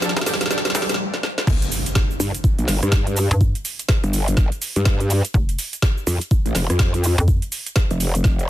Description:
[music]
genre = bass house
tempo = 124 BPM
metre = 4/4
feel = swing 60% on 16ths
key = unclear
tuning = A4 = 440 Hz
[part]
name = brilliant horn section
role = stabs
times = 0.0-0.8 s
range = D4 to A4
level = -30 LUFS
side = right 2 dB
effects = sidechain pumping, dub echo
[part]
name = garage drum kit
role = drums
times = 0.0-8.5 s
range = cabasa, crash cymbal, hi-hat, rim click, snare drum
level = -24 LUFS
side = right 1 dB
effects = overdrive, studio reverb
[part]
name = riser, noise sweep and impact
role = sound effects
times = 0.0-3.4 s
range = none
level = -27 LUFS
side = equal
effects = none
[part]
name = granular cloud pad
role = texture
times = 0.0-1.0 s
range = G4 to F5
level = -40 LUFS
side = right 1 dB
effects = none
[part]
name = hollow knocking FM bass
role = bass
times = 0.2-7.4 s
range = F1 to G2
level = -21 LUFS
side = equal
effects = sidechain pumping, high-pass filter
[part]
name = electronic kick drum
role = drums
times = 1.5-8.4 s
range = none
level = -18 LUFS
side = equal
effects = overdrive, studio reverb
[part]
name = growl bass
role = bass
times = 2.2-8.5 s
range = F1 to G2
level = -19 LUFS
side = equal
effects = chorus, tube saturation, sidechain pumping
[sound]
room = little or no reverb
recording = dense, heavily limited modern master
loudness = -17 LUFS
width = side -14 dB against mid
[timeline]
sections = 0.0-1.5 A section; 1.5-8.5 B section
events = build-up 0.0-1.5; drum fill 0.0-1.0, 1.1-1.5; riser 0.0-1.0; noise sweep 0.0-1.5; stop 1.0-1.5; drop 1.5-8.5; impact 1.5-3.4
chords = 0.0 Dm; 1.5 N.C.

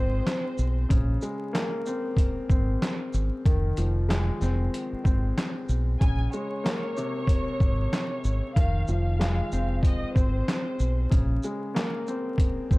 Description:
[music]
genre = hip hop, boom-bap hip-hop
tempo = 94 BPM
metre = 4/4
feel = swing 60% on 16ths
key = Bb minor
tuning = A4 = 435 Hz
[part]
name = warm symphonic violin section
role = melody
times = 0.0-0.9, 6.0-11.1 s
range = C5 to Ab5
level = -34 LUFS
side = equal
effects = high-pass filter, low-pass filter
[part]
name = warm upright piano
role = accompaniment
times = 0.0-12.8 s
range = C3 to C4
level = -31 LUFS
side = left 1 dB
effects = cassette tape, high-pass filter, low-pass filter
[part]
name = deep dub fingered electric bass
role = bass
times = 0.0-12.8 s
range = F1 to Cb2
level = -26 LUFS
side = equal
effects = none
[part]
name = trip hop sampler-style drum kit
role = drums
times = 0.3-12.8 s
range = handclaps, hi-hat, kick drum, shaker, snare drum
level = -25 LUFS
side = equal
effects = none
[sound]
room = digital ambience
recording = dark, warm production, vinyl crackle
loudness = -24 LUFS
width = side -22 dB against mid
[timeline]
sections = 0.0-12.8 A section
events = none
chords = 0.0 Fm7; 0.9 Bbm9; 3.5 Fm7; 6.0 Bbm9; 8.6 Fm7; 11.1 Bbm9

